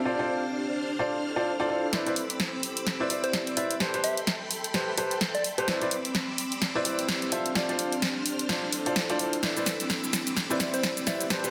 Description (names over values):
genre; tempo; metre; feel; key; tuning
piano house; 128 BPM; 4/4; swing 58% on 16ths; C major; A4 = 441 Hz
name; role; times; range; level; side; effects
string machine, violins; sustained chords; 0.0-11.5 s; C4 to F6; -37 LUFS; equal; ensemble chorus
warbly tape-like pad; texture; 0.0-11.5 s; C4 to E5; -39 LUFS; equal; chorus, built-in reverb
bright upright piano; riff; 0.1-11.5 s; E4 to E5; -33 LUFS; equal; low-pass filter, digital delay
punchy analog drum machine; drums; 1.9-11.5 s; cabasa, hi-hat, snare drum; -31 LUFS; equal; none
soft struck synth lead; melody; 3.2-5.7, 10.7-11.2 s; C5 to E5; -35 LUFS; equal; chorus, digital delay
room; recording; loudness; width
wet lush hall reverb, RT60 1.6 s, digital ambience; dense, heavily limited modern master; -28 LUFS; mono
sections
0.0-1.9 A section; 1.9-11.5 B section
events
build-up 1.9-11.5; drum fill 1.9-11.5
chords
0.0 Dm7; 1.9 Cmaj9; 7.3 Dm7; 9.4 Cmaj9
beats
| 0.05 0.52 0.99 1.46 | 1.93 2.40 2.87 3.33 | 3.80 4.27 4.74 5.21 | 5.68 6.15 6.62 7.08 | 7.55 8.02 8.49 8.96 | 9.43 9.90 10.37 10.84 | 11.30